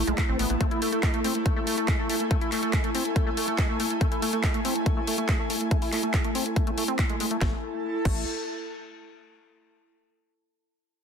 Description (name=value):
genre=psychedelic trance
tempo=141 BPM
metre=4/4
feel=straight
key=unclear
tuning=A4 = 445 Hz
part: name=pulsing gated texture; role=sustained chords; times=0.0-7.5 s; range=A3 to A4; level=-33 LUFS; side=right 3 dB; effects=chorus, built-in reverb, vintage 12-bit sampler grit, sidechain pumping
part: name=liquid acid bass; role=riff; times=0.0-8.3 s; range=G#3 to E4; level=-32 LUFS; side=moving between left 7 dB and right 2 dB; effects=chorus, auto-pan, sidechain pumping, ping-pong delay
part: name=tight sequencer bass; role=bass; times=0.0-0.6, 7.4-8.3 s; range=A1 to B1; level=-29 LUFS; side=equal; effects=none
part: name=airy breathy pad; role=texture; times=0.0-9.1 s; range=A3 to A5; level=-30 LUFS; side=left 1 dB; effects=chorus, sidechain pumping
part: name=drum and bass drum kit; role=drums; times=0.1-8.1 s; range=crash cymbal, handclaps, hi-hat, snare drum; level=-32 LUFS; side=left 2 dB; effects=overdrive
part: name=electronic kick drum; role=drums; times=0.2-8.1 s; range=none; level=-26 LUFS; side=equal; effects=none
room=moderate digital room reverb, RT60 1.0 s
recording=dense, heavily limited modern master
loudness=-24 LUFS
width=side -7 dB against mid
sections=0.0-7.4 A section; 7.4-9.1 B section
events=filter sweep on acid bass 0.0-7.4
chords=0.0 A5